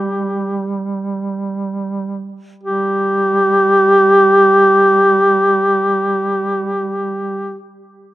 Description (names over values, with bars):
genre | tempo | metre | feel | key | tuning
caucasian folk, Caucasian lament | free time | none | none | unclear | A4 = 441 Hz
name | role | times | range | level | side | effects
warm duduk | melody | 0.0-7.6 s | G4 | -12 LUFS | equal | none
mellow duduk | drone | 0.0-7.5 s | G3 | -22 LUFS | right 4 dB | none
room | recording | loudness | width
studio ambience | rough home demo mix | -12 LUFS | side -15 dB against mid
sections
0.0-2.6 A section; 2.6-7.6 B section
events
slowing down 0.0-2.6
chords
none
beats
free time